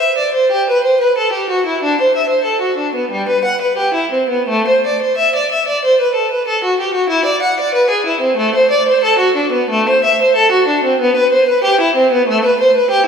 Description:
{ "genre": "classical, baroque-style suite movement for unaccompanied violin", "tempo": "93 BPM", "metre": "4/4", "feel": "rubato", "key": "G major", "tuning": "A4 = 440 Hz", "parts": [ { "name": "rich violin", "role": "solo", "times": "0.0-13.0 s", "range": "G3 to F#5", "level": "-12 LUFS", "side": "equal", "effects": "none" } ], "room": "wet concert hall reverb, RT60 2.0 s", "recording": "minimal, uncompressed stereo recording", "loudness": "-12 LUFS", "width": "side -6 dB against mid", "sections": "0.0-13.1 A section", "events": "none", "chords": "none" }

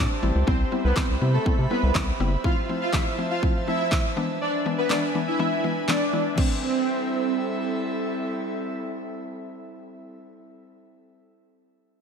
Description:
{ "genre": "dance-pop", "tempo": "122 BPM", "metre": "4/4", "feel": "straight", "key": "A minor", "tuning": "A4 = 438 Hz", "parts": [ { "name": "soft supersaw", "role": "melody", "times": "0.0-7.8 s", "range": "A3 to F5", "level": "-27 LUFS", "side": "right 1 dB", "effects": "lush chorus, sidechain pumping, diffuse ambient delay" }, { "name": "mallet-like synth pluck", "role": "accompaniment", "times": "0.0-10.2 s", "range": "E3 to G4", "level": "-29 LUFS", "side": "left 4 dB", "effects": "chorus, sidechain pumping" }, { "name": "airy breathy pad", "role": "sustained chords", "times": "0.0-10.2 s", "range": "F3 to B5", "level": "-30 LUFS", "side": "right 1 dB", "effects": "chorus, sidechain pumping" }, { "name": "round analog bass", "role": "bass", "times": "0.0-2.4 s", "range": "F#1 to C3", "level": "-23 LUFS", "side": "equal", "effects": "sidechain pumping" }, { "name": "pop drum kit", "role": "drums", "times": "0.5-6.5 s", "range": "crash cymbal, handclaps, kick drum, snare drum", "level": "-26 LUFS", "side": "equal", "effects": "none" } ], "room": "moderate lush hall reverb, RT60 1.6 s", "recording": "dreamy mix soaked in reverb", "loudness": "-22 LUFS", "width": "side -6 dB against mid", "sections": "0.0-6.4 A section; 6.4-10.3 B section", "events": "kick muted 4.4-6.4", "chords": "0.5 Cmaj7; 2.4 Fmaj7; 4.2 E7; 6.4 Am7" }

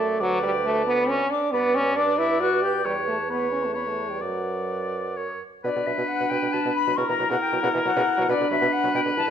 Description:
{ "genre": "quick classical-period movement for wind quintet", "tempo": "136 BPM", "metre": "3/4", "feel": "rubato", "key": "B minor", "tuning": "A4 = 439 Hz", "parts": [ { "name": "concert flute", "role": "melody", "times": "0.0-9.3 s", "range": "D5 to G6", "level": "-27 LUFS", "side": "left 6 dB", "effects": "none" }, { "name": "clear oboe", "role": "second line", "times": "0.0-9.3 s", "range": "A#4 to D5", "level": "-28 LUFS", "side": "left 3 dB", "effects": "none" }, { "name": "clear French horn", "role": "accompaniment", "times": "0.0-9.2 s", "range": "B2 to G4", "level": "-26 LUFS", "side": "right 1 dB", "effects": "none" }, { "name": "dark clarinet", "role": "accompaniment", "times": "0.0-9.3 s", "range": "D4 to B4", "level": "-30 LUFS", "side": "right 8 dB", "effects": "none" }, { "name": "mellow bassoon", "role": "bass", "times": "0.0-9.3 s", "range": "D2 to B2", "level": "-30 LUFS", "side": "right 2 dB", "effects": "none" } ], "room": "wet recital hall reverb, RT60 1.3 s", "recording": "none", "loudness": "-21 LUFS", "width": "side -8 dB against mid", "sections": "0.0-5.6 A section; 5.6-9.3 B section", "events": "none", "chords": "0.2 Bm/D; 1.5 G; 2.8 A9/E; 4.2 Bm/F#; 5.2 F#; 5.6 Bm; 7.0 F#7/B; 8.3 Bm" }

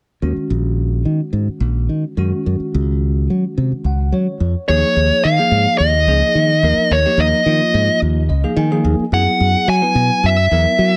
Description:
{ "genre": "electric jazz fusion", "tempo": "108 BPM", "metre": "4/4", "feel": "straight", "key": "unclear", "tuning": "A4 = 440 Hz", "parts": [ { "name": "bell-like tine electric piano", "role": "accompaniment", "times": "0.2-10.9 s", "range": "Eb3 to Ab5", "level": "-24 LUFS", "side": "equal", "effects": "subtle chorus" }, { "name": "modern bright fingered electric bass", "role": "bass", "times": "0.2-11.0 s", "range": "Bb1 to Gb3", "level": "-19 LUFS", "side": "equal", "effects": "none" }, { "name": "dark smooth lead guitar", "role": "melody", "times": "4.7-11.0 s", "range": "Db5 to Ab5", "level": "-18 LUFS", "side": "equal", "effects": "overdrive" } ], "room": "little or no reverb", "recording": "none", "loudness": "-16 LUFS", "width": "mono", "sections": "0.2-4.7 A section; 4.7-11.0 B section", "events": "tine electric piano fill 3.6-4.7, 8.0-9.1", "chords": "0.2 Ebm7; 2.2 Gb5; 4.7 Ebsus4; 9.1 Gb9sus4" }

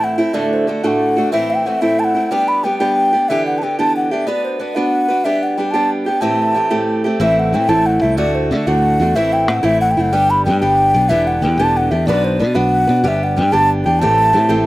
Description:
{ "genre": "celtic folk", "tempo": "123 BPM (dotted quarters)", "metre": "6/8", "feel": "straight", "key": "A dorian", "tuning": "A4 = 441 Hz", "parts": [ { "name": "mellow hollow wooden flute", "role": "melody", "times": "0.0-14.7 s", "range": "C5 to B5", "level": "-16 LUFS", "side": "equal", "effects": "none" }, { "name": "picked old ladder-braced acoustic guitar", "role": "accompaniment", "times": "0.0-14.7 s", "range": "D2 to B4", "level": "-17 LUFS", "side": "right 1 dB", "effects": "none" }, { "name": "fingered electric bass", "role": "bass", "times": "7.2-14.7 s", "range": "E1 to D3", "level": "-18 LUFS", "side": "equal", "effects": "none" } ], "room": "little or no reverb", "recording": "recorded outdoors, with no room sound", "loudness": "-13 LUFS", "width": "side -17 dB against mid", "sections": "0.0-7.2 A section; 7.2-14.7 A section", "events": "none", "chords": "0.3 D; 1.3 Am; 2.3 G; 3.3 Em7; 4.3 Bm; 5.2 G; 6.2 Am7; 7.2 Am; 8.2 D; 9.2 Am; 10.1 G; 11.1 Em7; 12.1 Bm; 13.0 G; 14.0 Am7" }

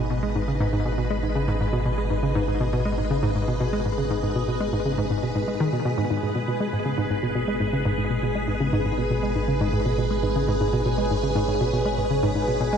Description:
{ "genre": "ambient, sequencer-driven space music", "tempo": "120 BPM", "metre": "4/4", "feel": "straight", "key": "G# minor", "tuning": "A4 = 441 Hz", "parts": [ { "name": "string machine, full ensemble", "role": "sustained chords", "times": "0.0-12.8 s", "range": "G#4 to D#5", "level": "-27 LUFS", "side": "right 1 dB", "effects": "phaser, ensemble chorus, shimmer reverb" }, { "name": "hollow square pluck", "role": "riff", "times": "0.0-12.8 s", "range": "G#2 to G#3", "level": "-24 LUFS", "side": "equal", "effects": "chorus, ping-pong delay" }, { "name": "round analog bass", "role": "bass", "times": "0.0-12.8 s", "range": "G#1", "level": "-30 LUFS", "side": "equal", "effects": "none" } ], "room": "moderate cathedral reverb, RT60 5.8 s", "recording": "dreamy mix soaked in reverb, cassette tape", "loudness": "-22 LUFS", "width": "side -7 dB against mid", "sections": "0.0-12.8 A section", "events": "fade-in on string machine 0.0-12.8", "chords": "0.0 G#m" }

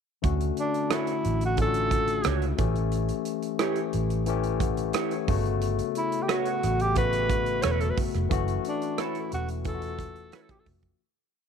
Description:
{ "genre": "lush 1970s-style soul", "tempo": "89 BPM", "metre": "4/4", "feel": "straight", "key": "D major", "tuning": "A4 = 439 Hz", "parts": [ { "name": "barky tine electric piano", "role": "accompaniment", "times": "0.2-11.0 s", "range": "C#3 to F#5", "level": "-30 LUFS", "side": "left 13 dB", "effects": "overdrive" }, { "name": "vintage muted fingered electric bass", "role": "bass", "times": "0.2-10.9 s", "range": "E1 to D2", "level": "-28 LUFS", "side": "right 1 dB", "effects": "tube saturation" }, { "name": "modern studio drum kit", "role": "drums", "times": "0.2-11.0 s", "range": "hi-hat, kick drum, rim click", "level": "-31 LUFS", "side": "right 4 dB", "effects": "none" }, { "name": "breathy tenor saxophone", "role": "melody", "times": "0.6-10.7 s", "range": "D4 to C#5", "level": "-29 LUFS", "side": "right 2 dB", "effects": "none" }, { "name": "electric guitar through a small old amp", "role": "riff", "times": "0.9-10.5 s", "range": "D4 to C#5", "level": "-32 LUFS", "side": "right 15 dB", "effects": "lush chorus" } ], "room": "light reverb, small room ambience", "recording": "1960s-style stereo with parts hard left and right", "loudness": "-24 LUFS", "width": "side -7 dB against mid", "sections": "0.2-11.0 verse", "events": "fade-out 8.3-11.0", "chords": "0.2 Dmaj7; 2.6 A7; 5.3 Gmaj9#11; 8.3 F#m7" }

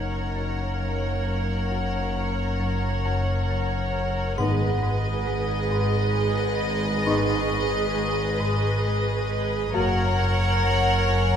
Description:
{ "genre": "cinematic, suspense film score", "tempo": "67 BPM", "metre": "3/4", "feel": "straight", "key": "G# minor", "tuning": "A4 = 438 Hz", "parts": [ { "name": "clear studio violin section", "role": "melody", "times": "0.0-11.4 s", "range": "D#5 to F#5", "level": "-30 LUFS", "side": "left 2 dB", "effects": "none" }, { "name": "dark studio violin section", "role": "second line", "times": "0.0-11.4 s", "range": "B4 to C#5", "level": "-30 LUFS", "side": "right 1 dB", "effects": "none" }, { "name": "warm studio viola section", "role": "accompaniment", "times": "0.0-11.4 s", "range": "G#4 to A#4", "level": "-30 LUFS", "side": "right 2 dB", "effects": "none" }, { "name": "dark French horn section", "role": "sustained chords", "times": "0.0-10.1 s", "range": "A#3 to F#4", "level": "-32 LUFS", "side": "left 1 dB", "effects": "none" }, { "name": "marimba with medium mallets", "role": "riff", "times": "0.0-11.4 s", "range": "F#2 to G#3", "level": "-29 LUFS", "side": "left 2 dB", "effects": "none" }, { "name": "warm studio cello section", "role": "bass", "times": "0.0-11.4 s", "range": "F#2 to G#2", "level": "-31 LUFS", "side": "right 1 dB", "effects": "none" }, { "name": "warm studio double bass section", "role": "bass", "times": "0.0-11.4 s", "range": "F#1 to G#1", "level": "-32 LUFS", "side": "right 2 dB", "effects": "none" }, { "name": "warm sub bass", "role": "drone", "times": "0.0-11.4 s", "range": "F#1 to G#1", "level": "-34 LUFS", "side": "equal", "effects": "none" }, { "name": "vibraphone with hard mallets", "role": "texture", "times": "0.0-11.4 s", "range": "D#4 to C#6", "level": "-39 LUFS", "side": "equal", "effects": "none" }, { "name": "timpani", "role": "percussion", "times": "4.4-5.7 s", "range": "G#2", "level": "-33 LUFS", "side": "left 1 dB", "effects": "none" } ], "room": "wet scoring stage reverb, RT60 1.9 s", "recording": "minimal, uncompressed stereo recording", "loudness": "-22 LUFS", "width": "side -8 dB against mid", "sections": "0.0-11.4 A section", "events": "none", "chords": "0.0 F#; 4.4 G#m; 9.7 F#" }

